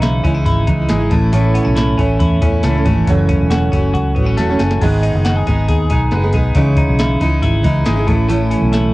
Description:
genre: jangly indie pop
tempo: 138 BPM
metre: 4/4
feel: straight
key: C# minor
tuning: A4 = 444 Hz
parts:
  - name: picked steel-string acoustic guitar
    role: accompaniment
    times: 0.0-8.9 s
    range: F#2 to G#4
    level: -18 LUFS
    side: right 3 dB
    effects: cassette tape
  - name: twelve-string electric guitar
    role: arpeggios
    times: 0.0-8.9 s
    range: F#2 to G#4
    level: -19 LUFS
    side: left 3 dB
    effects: cassette tape
  - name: vintage muted fingered electric bass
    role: bass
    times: 0.0-8.9 s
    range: E1 to E2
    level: -16 LUFS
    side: equal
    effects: none
  - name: soft vintage rhythm box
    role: drums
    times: 0.0-8.8 s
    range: crash cymbal, hi-hat, kick drum, snare drum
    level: -19 LUFS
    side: equal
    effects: cassette tape
room: light reverb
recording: home recording on cassette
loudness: -12 LUFS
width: side -19 dB against mid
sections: 0.0-8.9 A section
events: drum fill 4.4-4.8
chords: 0.0 C#madd9; 1.1 A; 3.1 F#m7; 4.8 G#m; 6.6 C#madd9; 8.1 F#m7 (rootless)

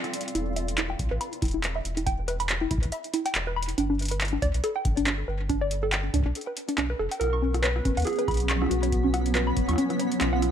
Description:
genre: IDM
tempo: 140 BPM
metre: 4/4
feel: swing 56% on 16ths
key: unclear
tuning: A4 = 436 Hz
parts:
  - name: granular cloud pad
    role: sustained chords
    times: 0.0-0.4, 8.0-10.5 s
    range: F#3 to F5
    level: -31 LUFS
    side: right 1 dB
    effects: built-in reverb
  - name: electro analog drum machine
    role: drums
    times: 0.0-10.5 s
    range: handclaps, hi-hat, rim click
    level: -31 LUFS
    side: equal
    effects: none
  - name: pulsing gated texture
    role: texture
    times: 0.0-0.4, 7.5-10.5 s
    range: G3 to B6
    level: -36 LUFS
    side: left 3 dB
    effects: chorus, built-in reverb
  - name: warbly dusty pluck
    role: arpeggios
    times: 0.3-10.4 s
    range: C#4 to C#6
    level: -29 LUFS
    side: equal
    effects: chorus, ping-pong delay
  - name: warm sub bass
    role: bass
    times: 0.4-10.5 s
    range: E1 to D#2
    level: -29 LUFS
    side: equal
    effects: tube saturation
  - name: electronic kick drum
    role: drums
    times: 1.0-9.7 s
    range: none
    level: -28 LUFS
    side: equal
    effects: none
  - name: warbly lo-fi synth keys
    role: melody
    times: 7.2-10.5 s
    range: F4 to B4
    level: -30 LUFS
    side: right 2 dB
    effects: chorus, ping-pong delay
room: light reverb, digital ambience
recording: none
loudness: -24 LUFS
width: side -9 dB against mid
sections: 0.4-10.5 A section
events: break 0.0-0.4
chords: 0.4 E5; 3.8 G; 7.2 Bsus2

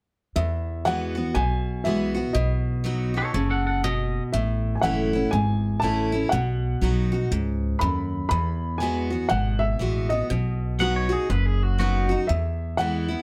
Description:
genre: honky-tonk and classic country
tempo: 121 BPM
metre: 4/4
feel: swing 61% on 8ths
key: E major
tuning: A4 = 440 Hz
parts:
  - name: dark upright piano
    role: melody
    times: 0.4-13.2 s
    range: D#5 to B5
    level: -30 LUFS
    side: equal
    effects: none
  - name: picked steel-string acoustic guitar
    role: accompaniment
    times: 0.4-13.2 s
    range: E2 to F#4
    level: -29 LUFS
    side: equal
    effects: none
  - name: upright bass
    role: bass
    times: 0.4-13.1 s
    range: F#1 to E2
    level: -28 LUFS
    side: equal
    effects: none
  - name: twangy electric guitar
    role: second line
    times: 3.2-4.2, 10.8-12.2 s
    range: F#4 to F#5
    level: -30 LUFS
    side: equal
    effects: none
room: light reverb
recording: dark, warm production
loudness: -24 LUFS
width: mono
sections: 0.4-13.2 A section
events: none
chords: 0.4 Eadd9; 2.4 B; 4.3 A; 6.3 B; 8.3 Eadd9; 10.3 B; 12.3 E

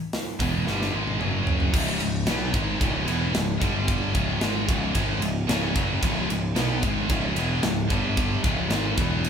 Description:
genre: heavy metal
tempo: 112 BPM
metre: 4/4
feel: straight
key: C# minor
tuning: A4 = 441 Hz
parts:
  - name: tight metal drum kit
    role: drums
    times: 0.1-9.3 s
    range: crash cymbal, hi-hat, kick drum, ride cymbal, snare drum, toms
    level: -27 LUFS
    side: equal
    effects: none
  - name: scooped high-gain guitar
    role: riff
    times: 0.4-9.3 s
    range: C#2 to B3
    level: -29 LUFS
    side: left 8 dB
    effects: distortion
  - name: scooped high-gain guitar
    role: riff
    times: 0.4-9.3 s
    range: C#2 to B3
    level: -28 LUFS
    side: right 7 dB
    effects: distortion
  - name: fuzz picked electric bass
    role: bass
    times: 0.4-9.3 s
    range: C#1 to B1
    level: -28 LUFS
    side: equal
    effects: overdrive
room: light reverb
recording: band playing live in one room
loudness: -22 LUFS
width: side -7 dB against mid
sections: 0.0-1.7 A section; 1.7-9.3 B section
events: drum fill 0.7-1.7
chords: 0.0 C#m (rootless); 1.2 F#5; 1.7 C#m; 3.6 G5; 4.2 C#m; 7.9 G5; 8.4 C#5

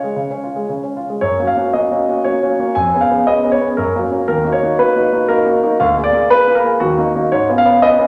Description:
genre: classical-period piano sonatina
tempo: 118 BPM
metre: 3/4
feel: straight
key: F# major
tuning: A4 = 440 Hz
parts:
  - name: warm grand piano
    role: solo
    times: 0.0-8.1 s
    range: D2 to G#5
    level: -15 LUFS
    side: equal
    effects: none
room: wet recital hall reverb, RT60 1.5 s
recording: none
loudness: -15 LUFS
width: mono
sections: 0.0-1.2 A section; 1.2-8.1 B section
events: none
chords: 0.0 C#; 1.2 F#; 2.8 C#7/E#; 3.8 F#; 4.3 D#m; 5.8 A#7/D; 6.8 D#m; 7.3 C#7/G#

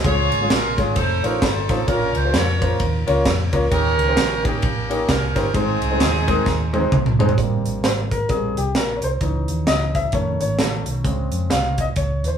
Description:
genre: uptempo gospel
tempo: 131 BPM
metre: 4/4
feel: swing 60% on 8ths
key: Ab major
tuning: A4 = 445 Hz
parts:
  - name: edgy saxophone section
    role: melody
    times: 0.0-6.9 s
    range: Bb3 to Db5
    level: -22 LUFS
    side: right 2 dB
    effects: none
  - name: clear grand piano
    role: accompaniment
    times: 0.0-12.4 s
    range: Ab2 to F5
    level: -22 LUFS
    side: left 1 dB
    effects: none
  - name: hollow-body short-scale fingered electric bass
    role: bass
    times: 0.0-12.4 s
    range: F1 to F2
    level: -24 LUFS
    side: equal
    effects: none
  - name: crisp fusion drum kit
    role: drums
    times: 0.0-12.3 s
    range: hi-hat, kick drum, ride cymbal, snare drum, toms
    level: -22 LUFS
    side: right 1 dB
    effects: none
room: moderate studio reverb, RT60 0.7 s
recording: band playing live in one room, small room ambience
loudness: -17 LUFS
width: side -8 dB against mid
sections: 0.0-7.4 A section; 7.4-12.4 B section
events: drum fill 6.5-7.4; grand piano solo 7.4-12.4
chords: 0.0 Db; 1.0 F7b13; 1.9 Bbm; 3.7 Eb7; 5.5 Ab; 7.4 Abmaj7; 9.2 Dbmadd9; 10.1 F7alt; 11.0 Dbmaj9

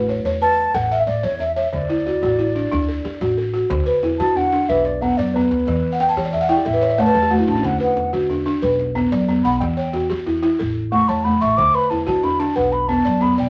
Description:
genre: west african traditional, West African string and xylophone music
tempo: 122 BPM (dotted quarters)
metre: 12/8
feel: straight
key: D major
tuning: A4 = 440 Hz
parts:
  - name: balafon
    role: arpeggios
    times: 0.0-13.5 s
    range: D3 to A5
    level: -21 LUFS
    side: equal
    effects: none
  - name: upright bass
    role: bass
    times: 0.0-13.5 s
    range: A1 to E3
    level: -29 LUFS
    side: equal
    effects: none
  - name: djembe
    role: percussion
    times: 0.0-13.4 s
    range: none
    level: -35 LUFS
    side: equal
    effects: none
  - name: mellow hollow concert flute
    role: melody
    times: 0.4-13.5 s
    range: B4 to D6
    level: -23 LUFS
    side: equal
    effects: none
room: moderate studio reverb, RT60 0.7 s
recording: none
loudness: -19 LUFS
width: mono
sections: 0.0-3.7 A section; 3.7-13.5 B section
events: flute solo 3.7-13.5; balafon fill 5.9-7.6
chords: 0.0 A; 1.7 D; 4.7 Bm; 5.7 Em; 6.7 A5; 7.6 D; 8.6 Bm; 9.6 Em; 10.6 A; 11.6 D; 12.6 Bm

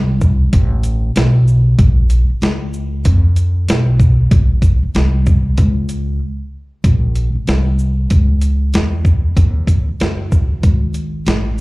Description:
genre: hip hop, jazz-hop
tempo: 95 BPM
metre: 4/4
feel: swing 60% on 16ths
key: unclear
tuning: A4 = 440 Hz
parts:
  - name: upright bass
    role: bass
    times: 0.0-11.6 s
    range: Gb1 to F2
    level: -14 LUFS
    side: equal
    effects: none
  - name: boom bap sampler-style drum kit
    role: drums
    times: 0.2-11.6 s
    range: hi-hat, kick drum, shaker, snare drum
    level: -14 LUFS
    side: equal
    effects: none
room: little or no reverb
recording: live gig heard through the venue's PA, club reverb, lossy compression artefacts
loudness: -12 LUFS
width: side -22 dB against mid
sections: 0.0-6.8 A section; 6.8-11.6 B section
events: break 6.2-6.8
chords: none

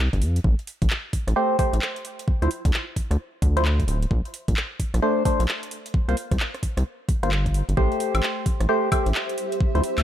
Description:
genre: UK garage, two-step garage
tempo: 131 BPM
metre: 4/4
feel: swing 64% on 16ths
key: unclear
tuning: A4 = 439 Hz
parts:
  - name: rubbery square bass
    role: bass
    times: 0.0-10.0 s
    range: D1 to F2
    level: -22 LUFS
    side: equal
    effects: none
  - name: electronic kick drum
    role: drums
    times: 0.1-9.7 s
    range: none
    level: -23 LUFS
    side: equal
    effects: overdrive
  - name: garage drum kit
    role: drums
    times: 0.1-10.0 s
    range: handclaps, hi-hat, rim click, woodblock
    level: -30 LUFS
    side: equal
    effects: overdrive
  - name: percussive organ stab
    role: stabs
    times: 1.4-9.8 s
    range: F3 to C5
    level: -25 LUFS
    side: equal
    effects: chorus, phaser, tape echo
  - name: granular cloud pad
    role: texture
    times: 8.6-10.0 s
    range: G4 to E5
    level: -30 LUFS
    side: equal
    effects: built-in reverb, sidechain pumping
room: light reverb, digital ambience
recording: none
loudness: -21 LUFS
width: side -11 dB against mid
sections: 0.0-7.8 A section; 7.8-10.0 B section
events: drop 7.8-10.0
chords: 0.4 Am7; 2.0 Dm9; 4.1 Bbmaj9; 5.9 C7sus4; 7.8 Am7; 9.4 Dm9

